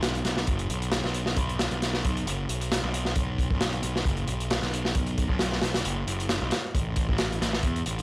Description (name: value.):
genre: breakbeat, breaks.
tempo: 134 BPM.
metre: 4/4.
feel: swing 54% on 16ths.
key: unclear.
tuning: A4 = 440 Hz.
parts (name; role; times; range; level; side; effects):
fuzz picked electric bass; bass; 0.0-8.0 s; F#1 to E2; -29 LUFS; equal; overdrive.
crunchy breakbeat drum kit; drums; 0.0-8.0 s; hi-hat, kick drum, snare drum; -27 LUFS; equal; none.
room: little or no reverb.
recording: dry, gritty hardware recording.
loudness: -25 LUFS.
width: side -26 dB against mid.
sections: 0.0-8.0 A section.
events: none.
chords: none.